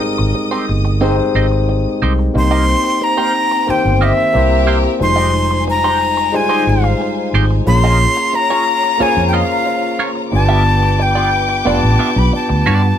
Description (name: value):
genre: soul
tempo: 90 BPM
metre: 4/4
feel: straight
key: unclear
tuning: A4 = 439 Hz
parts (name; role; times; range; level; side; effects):
- warm studio string section; second line; 0.0-13.0 s; C4 to Eb6; -23 LUFS; left 2 dB; none
- barky tine electric piano; accompaniment; 0.0-13.0 s; Eb3 to D5; -19 LUFS; left 2 dB; none
- clean electric guitar; riff; 0.0-12.9 s; Ab3 to E5; -21 LUFS; right 4 dB; wah
- vintage muted fingered electric bass; bass; 0.2-12.9 s; F1 to G2; -15 LUFS; right 1 dB; none
- breathy bright jazz flute; melody; 2.4-13.0 s; E5 to C6; -16 LUFS; left 1 dB; none
room: moderate small room reverb, RT60 0.6 s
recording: band playing live in one room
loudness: -12 LUFS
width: side -9 dB against mid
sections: 0.0-2.4 A section; 2.4-13.0 B section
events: none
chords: 0.0 Abmaj7; 2.4 Cm7; 4.3 C7; 5.0 Fm9; 7.7 Bbm7; 10.3 G7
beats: 0.35 1.02 1.69 | 2.35 3.02 3.68 4.35 | 5.01 5.68 6.34 7.01 | 7.67 8.34 9.01 9.67 | 10.34 11.00 11.67 12.33